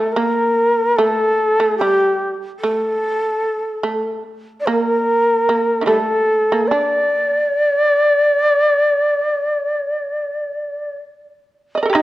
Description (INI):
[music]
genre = japanese traditional, Japanese chamber music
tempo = 63-74 BPM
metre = 4/4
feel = rubato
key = D miyako bushi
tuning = A4 = 438 Hz
[part]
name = breathy mellow shakuhachi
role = melody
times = 0.0-12.0 s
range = G4 to Eb5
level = -16 LUFS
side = equal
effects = none
[part]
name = shamisen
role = second line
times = 0.0-12.0 s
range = D3 to Eb5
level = -20 LUFS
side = right 2 dB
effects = none
[part]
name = taiko ensemble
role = percussion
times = 11.9-12.0 s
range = none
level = -21 LUFS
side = left 2 dB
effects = none
[sound]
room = moderate concert hall reverb, RT60 1.7 s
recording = worn, warbling old tape, cassette tape, warbly pitch drift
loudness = -15 LUFS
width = side -16 dB against mid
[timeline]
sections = 0.0-11.9 A section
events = none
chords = none